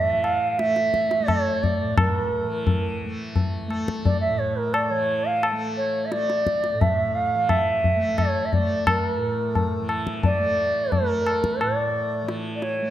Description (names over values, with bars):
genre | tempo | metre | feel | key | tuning
indian classical, Hindustani | 87 BPM | 5/4 | straight | A major | A4 = 440 Hz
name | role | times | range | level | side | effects
reedy bansuri | melody | 0.0-12.9 s | Bb4 to F5 | -23 LUFS | right 2 dB | none
tanpura | drone | 0.0-12.9 s | A2 to A3 | -30 LUFS | equal | none
tabla | percussion | 0.2-12.9 s | none | -24 LUFS | left 2 dB | none
room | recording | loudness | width
moderate concert hall reverb, RT60 1.8 s | none | -21 LUFS | side -12 dB against mid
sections
0.0-12.9 A section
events
none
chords
none